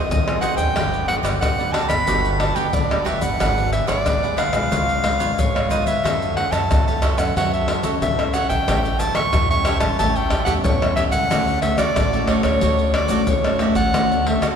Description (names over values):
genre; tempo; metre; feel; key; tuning
samba and choro; 91 BPM; 4/4; straight; D major; A4 = 439 Hz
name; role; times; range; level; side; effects
breathy soprano saxophone; melody; 0.0-14.4 s; C#5 to C#6; -22 LUFS; equal; none
nylon-string guitar; accompaniment; 0.0-14.6 s; G2 to A4; -26 LUFS; left 2 dB; none
upright bass; bass; 0.0-14.6 s; G1 to F#2; -25 LUFS; equal; none
egg shaker, surdo, pandeiro and tamborim; percussion; 0.1-14.6 s; none; -22 LUFS; left 1 dB; none
cavaquinho; accompaniment; 0.3-14.5 s; D4 to F#5; -27 LUFS; right 4 dB; none
room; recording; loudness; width
wet cathedral reverb, RT60 6.7 s; recorded in a church or concert hall; -17 LUFS; side -7 dB against mid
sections
0.0-14.6 A section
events
none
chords
0.0 G#6; 0.8 Gmaj7; 3.4 G#m7b5; 4.7 C#7; 6.0 F#m7; 8.7 A7; 11.3 Dmaj7